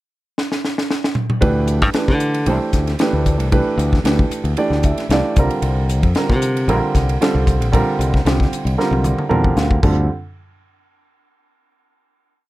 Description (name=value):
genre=electric jazz fusion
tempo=114 BPM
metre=4/4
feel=swing 53% on 16ths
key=D minor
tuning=A4 = 440 Hz
part: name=crisp fusion drum kit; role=drums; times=0.4-10.0 s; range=crash cymbal, hi-hat, kick drum, ride cymbal, snare drum, toms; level=-20 LUFS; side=equal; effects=none
part: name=dark grand piano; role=accompaniment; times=1.4-10.1 s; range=D3 to A5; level=-20 LUFS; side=right 2 dB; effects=none
part: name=modern bright fingered electric bass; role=bass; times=1.4-10.1 s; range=Bb1 to D3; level=-18 LUFS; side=left 1 dB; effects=none
room=little or no reverb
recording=none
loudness=-15 LUFS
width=side -17 dB against mid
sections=0.0-1.4 pickup bar; 1.4-9.8 groove; 9.8-11.9 final chord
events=drum fill 0.4-1.4, 8.8-9.8; grand piano fill 4.6-5.6, 9.0-9.8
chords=0.0 N.C.; 1.4 D13sus4; 5.4 C13sus4; 9.8 Dm